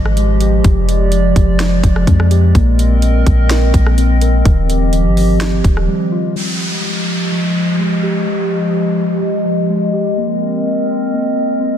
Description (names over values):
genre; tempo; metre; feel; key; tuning
hip hop, atmospheric cloud-rap; 126 BPM; 4/4; half-time; unclear; A4 = 440 Hz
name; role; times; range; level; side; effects
warbly tape-like pad; sustained chords; 0.0-11.8 s; F3 to Eb5; -16 LUFS; equal; chorus, built-in reverb, sidechain pumping, low-pass filter
muted felt-like synth keys; arpeggios; 0.0-11.8 s; Eb3 to Bb4; -21 LUFS; left 4 dB; chorus, low-pass filter, ping-pong delay
soft 808-style bass; bass; 0.0-5.9 s; Eb1 to F2; -13 LUFS; equal; none
trap drum kit; drums; 0.1-5.9 s; hi-hat, kick drum, rim click, snare drum; -15 LUFS; equal; none
downlifter; sound effects; 6.4-10.2 s; none; -24 LUFS; equal; none
room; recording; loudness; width
digital ambience; dense, heavily limited modern master; -12 LUFS; side -10 dB against mid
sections
0.0-6.4 A section; 6.4-11.8 B section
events
break 5.9-6.4; filter sweep 6.4-11.8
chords
0.0 Fm9; 2.5 Bb9sus4; 4.5 Eb69; 6.4 Fm9; 10.2 Bb9sus4